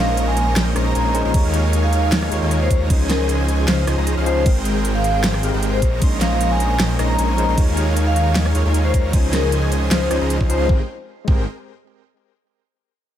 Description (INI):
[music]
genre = future bass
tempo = 154 BPM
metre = 4/4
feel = half-time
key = Ab major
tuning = A4 = 440 Hz
[part]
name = vibraphone with medium mallets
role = melody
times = 0.0-10.7 s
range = Bb4 to Bb5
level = -24 LUFS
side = left 2 dB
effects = sidechain pumping, ping-pong delay
[part]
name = tine electric piano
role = accompaniment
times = 0.0-11.4 s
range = F3 to C6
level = -25 LUFS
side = left 2 dB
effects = medium stereo tremolo, sidechain pumping
[part]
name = dense compressed supersaw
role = riff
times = 0.0-11.4 s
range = Ab3 to C6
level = -25 LUFS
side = right 2 dB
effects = sidechain pumping
[part]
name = wide detuned saw bass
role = bass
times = 0.0-11.5 s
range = Ab1 to Eb2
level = -20 LUFS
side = equal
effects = chorus, sidechain pumping
[part]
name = pop drum kit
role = drums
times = 0.2-10.6 s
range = crash cymbal, hi-hat, rim click, snare drum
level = -23 LUFS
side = equal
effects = none
[part]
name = electronic kick drum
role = drums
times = 1.3-11.4 s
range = none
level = -17 LUFS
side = equal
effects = none
[sound]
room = light reverb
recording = none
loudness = -16 LUFS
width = side -10 dB against mid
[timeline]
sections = 0.0-10.7 A section; 10.7-12.3 B section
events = drop 0.0-10.7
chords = 0.0 Bbm11; 1.3 Eb9sus4; 2.9 Dbmaj9; 4.5 Abmaj9; 5.8 Bbm11; 7.6 Eb9sus4; 9.1 Dbmaj9; 10.7 Abmaj9